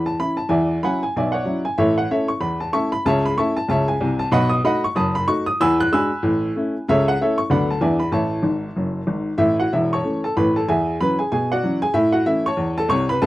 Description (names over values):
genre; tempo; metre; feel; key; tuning
jazz, stride piano; 189 BPM; 4/4; swing 61% on 8ths; A major; A4 = 440 Hz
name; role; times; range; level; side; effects
warm upright piano; solo; 0.0-13.3 s; E1 to F#6; -18 LUFS; equal; none
room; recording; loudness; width
little or no reverb; dry, close 1970s-style studio recording; -18 LUFS; side -16 dB against mid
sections
0.0-9.4 A section; 9.4-13.3 A section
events
upright piano fill 8.4-9.4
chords
0.5 E13; 1.8 A; 3.0 A/C#; 4.3 B7; 5.6 E9; 6.2 A; 6.9 A/C#; 7.5 Bm/D; 7.8 E7; 8.1 A; 10.7 E13; 11.9 A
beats
0.17 | 0.49 0.81 1.13 1.45 | 1.77 2.09 2.40 2.72 | 3.04 3.36 3.68 4.00 | 4.31 4.63 4.95 5.27 | 5.58 5.90 6.22 6.54 | 6.86 7.17 7.49 7.81 | 8.13 8.45 8.77 9.08 | 9.40 9.72 10.04 10.36 | 10.67 10.99 11.31 11.63 | 11.94 12.26 12.58 12.90 | 13.21